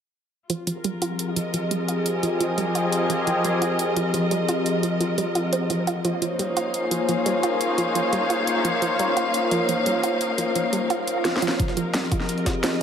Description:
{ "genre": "dark technical drum and bass", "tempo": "173 BPM", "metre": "4/4", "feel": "straight", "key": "F minor", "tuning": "A4 = 439 Hz", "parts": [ { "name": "sweeping resonant pad", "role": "sustained chords", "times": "0.5-12.8 s", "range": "F3 to Db5", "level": "-24 LUFS", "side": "left 1 dB", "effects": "chorus, sidechain pumping" }, { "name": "analog pluck", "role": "arpeggios", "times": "0.5-12.7 s", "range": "F3 to F4", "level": "-28 LUFS", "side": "right 4 dB", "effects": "chorus, sidechain pumping, tape echo" }, { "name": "drum and bass drum kit", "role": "drums", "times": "0.5-12.7 s", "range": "hi-hat, snare drum", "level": "-28 LUFS", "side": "equal", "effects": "overdrive" }, { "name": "warm studio string section", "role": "texture", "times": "0.5-12.8 s", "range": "Bb3 to F5", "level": "-27 LUFS", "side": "left 1 dB", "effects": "sidechain pumping" }, { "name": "swell", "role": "sound effects", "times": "11.0-11.6 s", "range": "none", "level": "-32 LUFS", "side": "right 4 dB", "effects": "none" }, { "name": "electronic kick drum", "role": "drums", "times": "11.6-12.5 s", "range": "none", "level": "-25 LUFS", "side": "equal", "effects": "overdrive" }, { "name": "jungle sampler-style drum kit", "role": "drums", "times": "11.6-12.7 s", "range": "hi-hat, snare drum", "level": "-34 LUFS", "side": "left 1 dB", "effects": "none" } ], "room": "moderate digital room reverb, RT60 1.2 s, digital ambience", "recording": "none", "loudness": "-21 LUFS", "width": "side -8 dB against mid", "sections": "0.5-12.8 A section", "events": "filter sweep on synth arpeggio sound 0.5-12.8; swell 11.0-11.6; drum fill 11.2-11.6", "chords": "0.5 Fm; 6.0 Bbm; 11.6 Fm" }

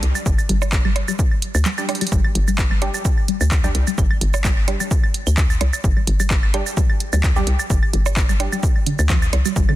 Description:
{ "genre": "minimal techno", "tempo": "129 BPM", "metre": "4/4", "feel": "swing 54% on 16ths", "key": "unclear", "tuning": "A4 = 442 Hz", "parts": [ { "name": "hollow knocking FM bass", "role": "bass", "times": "0.0-9.7 s", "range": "G1 to D2", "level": "-20 LUFS", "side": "equal", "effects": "sidechain pumping" }, { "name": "punchy analog drum machine", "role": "drums", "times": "0.0-9.7 s", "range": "handclaps, hi-hat, shaker", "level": "-26 LUFS", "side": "right 2 dB", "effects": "none" }, { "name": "claves and percussion blips", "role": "percussion", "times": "0.2-9.8 s", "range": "none", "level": "-28 LUFS", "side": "right 4 dB", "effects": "dub echo" }, { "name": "electronic kick drum", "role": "drums", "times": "0.3-9.7 s", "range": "none", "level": "-18 LUFS", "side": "equal", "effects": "none" }, { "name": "resonant blip pluck", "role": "riff", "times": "0.5-9.7 s", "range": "D3 to G3", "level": "-27 LUFS", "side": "left 1 dB", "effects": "phaser, lush chorus, sidechain pumping" }, { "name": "filtered dub chord stab", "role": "stabs", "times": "1.8-8.5 s", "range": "G3 to G4", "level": "-30 LUFS", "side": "right 3 dB", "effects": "chorus, dub echo" } ], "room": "digital ambience", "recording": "dense, heavily limited modern master", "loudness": "-16 LUFS", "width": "side -15 dB against mid", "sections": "0.0-9.8 A section", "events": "filter sweep on synth pluck 0.0-9.8; drum fill 1.9", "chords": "0.0 G5" }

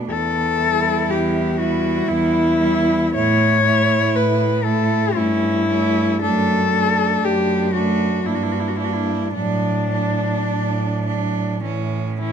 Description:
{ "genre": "classical, lyrical piece for cello ensemble", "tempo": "58 BPM", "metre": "3/4", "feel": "uneven beats, rubato", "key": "D major", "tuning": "A4 = 440 Hz", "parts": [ { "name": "rich cello", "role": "second line", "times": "0.0-12.3 s", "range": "C#4 to E4", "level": "-24 LUFS", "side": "right 9 dB", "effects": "none" }, { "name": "clear cello", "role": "accompaniment", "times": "0.0-12.3 s", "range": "E3 to Bb3", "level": "-24 LUFS", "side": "equal", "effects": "none" }, { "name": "clear cello", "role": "bass", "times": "0.0-12.3 s", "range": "E2 to A2", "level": "-22 LUFS", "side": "right 2 dB", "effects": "none" }, { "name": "rich cello", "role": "melody", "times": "0.1-12.3 s", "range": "D4 to C#5", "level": "-20 LUFS", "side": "left 6 dB", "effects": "none" } ], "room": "light reverb", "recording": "close, detailed microphones", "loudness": "-16 LUFS", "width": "side -7 dB against mid", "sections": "0.0-12.3 A section", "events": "none", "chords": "0.1 Em; 3.1 A; 5.2 A7/G; 6.2 D/F#; 8.3 Gm6; 9.3 D/A; 11.6 A" }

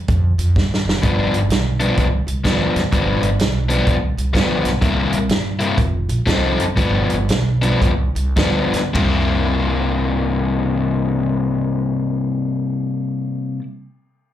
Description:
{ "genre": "electric blues shuffle", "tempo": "101-127 BPM", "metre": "4/4", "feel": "swing 64% on 8ths", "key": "C mixolydian", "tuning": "A4 = 442 Hz", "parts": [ { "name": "upright bass", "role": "bass", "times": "0.1-13.6 s", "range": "F1 to G2", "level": "-21 LUFS", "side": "right 1 dB", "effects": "none" }, { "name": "vintage drum kit", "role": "drums", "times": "0.1-9.1 s", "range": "hi-hat, kick drum, ride cymbal, snare drum, toms", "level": "-21 LUFS", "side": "right 1 dB", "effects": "none" }, { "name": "crunchy overdriven guitar", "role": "riff", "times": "1.0-13.6 s", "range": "G2 to A4", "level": "-18 LUFS", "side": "left 3 dB", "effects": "slapback echo" } ], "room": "light reverb", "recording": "live gig heard through the venue's PA, club reverb", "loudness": "-16 LUFS", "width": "side -11 dB against mid", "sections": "0.0-8.9 A section; 8.9-13.7 B section", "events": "drum fill 0.6-1.0; slowing down 4.8-8.9", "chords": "0.0 N.C.; 1.0 G7; 4.8 C7; 5.8 F7; 6.8 G7; 8.9 C7" }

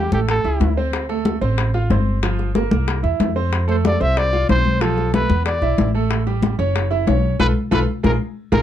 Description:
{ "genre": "Afro-Cuban jazz", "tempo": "186 BPM", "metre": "4/4", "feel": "straight", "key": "A minor", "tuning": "A4 = 441 Hz", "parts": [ { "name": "mellow trumpet", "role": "melody", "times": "0.0-0.7, 3.7-8.6 s", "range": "G4 to E5", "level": "-21 LUFS", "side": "equal", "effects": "none" }, { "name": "clear concert grand piano", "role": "accompaniment", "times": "0.0-8.6 s", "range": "F3 to F5", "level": "-23 LUFS", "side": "right 5 dB", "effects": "none" }, { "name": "upright bass", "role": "bass", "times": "0.0-8.6 s", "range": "F#1 to F2", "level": "-20 LUFS", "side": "equal", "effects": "none" }, { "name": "bongos", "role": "percussion", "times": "0.1-8.6 s", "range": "none", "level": "-27 LUFS", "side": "left 7 dB", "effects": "none" }, { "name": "congas", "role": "percussion", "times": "0.1-8.6 s", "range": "none", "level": "-23 LUFS", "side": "left 3 dB", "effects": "none" } ], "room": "light reverb", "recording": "dark, warm production", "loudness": "-16 LUFS", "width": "side -11 dB against mid", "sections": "0.0-8.6 A section", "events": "band accent 7.4-8.6", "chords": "0.3 A; 0.9 Dm7; 2.2 Gm7; 2.9 C7; 3.5 F; 4.8 Fmaj7#11/B; 5.5 E5; 6.1 A7; 6.8 F#5; 7.4 Asus2/B; 8.0 Bb5" }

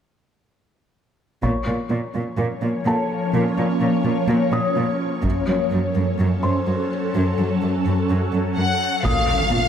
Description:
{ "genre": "cinematic, hybrid orchestral and electronic film score", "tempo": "126 BPM", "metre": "4/4", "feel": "straight", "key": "Bb harmonic minor", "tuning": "A4 = 441 Hz", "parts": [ { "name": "ethereal airy pad", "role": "sustained chords", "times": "2.5-9.7 s", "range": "F3 to Db5", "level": "-23 LUFS", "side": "left 1 dB", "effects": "ensemble chorus, built-in reverb, phaser" }, { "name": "rich symphonic cello section", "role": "bass", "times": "1.4-9.7 s", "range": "Gb2 to Bb2", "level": "-22 LUFS", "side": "right 2 dB", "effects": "none" }, { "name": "taiko ensemble", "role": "drums", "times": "1.4-2.3, 5.2-6.2, 9.1-9.7 s", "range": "none", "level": "-27 LUFS", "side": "equal", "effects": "none" }, { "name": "felt-muted upright piano", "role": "texture", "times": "1.4-9.7 s", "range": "A4 to Eb6", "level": "-29 LUFS", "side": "left 2 dB", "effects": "tape echo" }, { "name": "rich symphonic violin section", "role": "melody", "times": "8.6-9.7 s", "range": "F5 to Gb5", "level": "-20 LUFS", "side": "left 4 dB", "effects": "none" }, { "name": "impact", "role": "sound effects", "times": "9.1-9.7 s", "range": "none", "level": "-24 LUFS", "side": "equal", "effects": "none" } ], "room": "wet recital hall reverb, RT60 1.6 s", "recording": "none", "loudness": "-19 LUFS", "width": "side -8 dB against mid", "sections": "1.4-9.1 A section", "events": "impact 9.1-9.7", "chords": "1.4 Bbm; 5.2 Gbm; 9.1 Bbm" }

